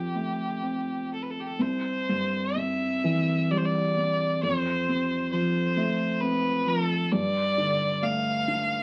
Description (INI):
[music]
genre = celtic folk, Celtic slow air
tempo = 62-67 BPM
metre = 3/4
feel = rubato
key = unclear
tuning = A4 = 439 Hz
[part]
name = clear fiddle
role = melody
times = 0.0-8.8 s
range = G4 to F5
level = -30 LUFS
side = equal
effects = none
[part]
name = felt-muted upright piano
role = accompaniment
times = 0.0-8.8 s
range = C2 to D4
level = -29 LUFS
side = equal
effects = none
[sound]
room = moderate studio reverb, RT60 0.5 s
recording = very old 78 rpm record, vinyl crackle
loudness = -27 LUFS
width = mono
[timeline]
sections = 0.0-1.6 A section; 1.6-8.8 B section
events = none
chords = 0.0 Fadd9; 1.6 C; 4.4 F; 7.1 Gsus2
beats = 0.63 | 1.60 2.56 3.50 | 4.42 5.33 6.23 | 7.13 8.03